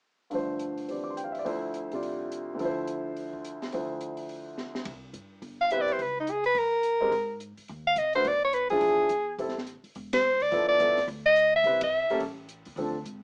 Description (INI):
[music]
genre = jazz, small-group swing and bop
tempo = 212 BPM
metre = 4/4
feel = swing 61% on 8ths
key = C major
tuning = A4 = 438 Hz
[part]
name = warm concert grand piano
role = accompaniment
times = 0.3-12.9 s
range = D2 to D6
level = -34 LUFS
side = equal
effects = none
[part]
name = open jazz drum kit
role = drums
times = 0.3-13.1 s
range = hi-hat, kick drum, ride cymbal, snare drum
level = -43 LUFS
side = equal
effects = none
[part]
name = upright bass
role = bass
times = 4.9-13.2 s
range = E1 to Ab2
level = -47 LUFS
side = equal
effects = none
[part]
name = breathy soprano saxophone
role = melody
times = 5.6-12.2 s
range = Eb4 to F5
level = -26 LUFS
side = equal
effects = none
[sound]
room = wet studio reverb, RT60 0.5 s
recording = rough home demo mix, small speaker sound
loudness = -28 LUFS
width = mono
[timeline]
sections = 0.3-4.9 A section; 4.9-13.2 B section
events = drum fill 4.6; band accent 10.1, 11.8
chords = 0.3 G7sus4; 1.5 Dm9; 4.9 Cmaj7; 6.0 Abmadd11/Db; 6.6 F#add9; 7.1 Abadd9; 8.3 Bm; 8.8 E7b9; 9.4 Am7; 10.5 G13; 11.6 Cmaj7; 12.2 N.C.